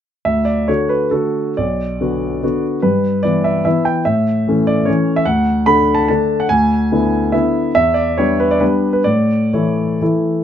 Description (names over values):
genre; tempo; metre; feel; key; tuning
classical, romantic triple-time dance for piano with dotted rhythms; 122-157 BPM; 3/4; rubato; D major; A4 = 440 Hz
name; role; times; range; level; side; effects
warm grand piano; solo; 0.2-10.4 s; B1 to B5; -13 LUFS; equal; none
room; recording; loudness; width
light reverb; close, detailed microphones; -13 LUFS; side -9 dB against mid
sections
0.2-10.4 A section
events
none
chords
0.2 D; 1.6 Bm; 2.8 Em/G; 4.1 A; 5.3 D; 6.5 E7/D; 7.7 Em7; 9.1 A